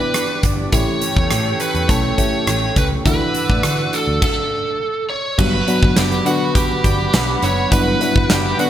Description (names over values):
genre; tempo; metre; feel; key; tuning
1980s-style pop; 103 BPM; 4/4; straight; unclear; A4 = 440 Hz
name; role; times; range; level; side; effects
lead guitar through a small cranked amp; melody; 0.0-8.7 s; F#4 to C#5; -21 LUFS; right 2 dB; overdrive
FM electric piano; accompaniment; 0.0-8.7 s; D3 to F#5; -22 LUFS; left 3 dB; chorus
warm analog pad; sustained chords; 0.0-8.7 s; G4 to E6; -26 LUFS; right 1 dB; chorus
clean electric guitar; riff; 0.0-8.7 s; E3 to G4; -26 LUFS; right 4 dB; tube saturation, wide subtle chorus
huge arena drum kit; drums; 0.1-8.7 s; crash cymbal, hi-hat, kick drum, rim click, snare drum; -19 LUFS; equal; none
vintage muted picked electric bass; bass; 0.4-8.5 s; F#1 to D3; -22 LUFS; equal; none
room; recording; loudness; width
light reverb, small room ambience; bright 1980s-style digital production; -15 LUFS; side -11 dB against mid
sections
0.0-5.4 A section; 5.4-8.7 B section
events
stop 4.2-5.4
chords
0.0 Em7; 0.7 A7; 3.1 Dadd9; 5.4 Gmaj7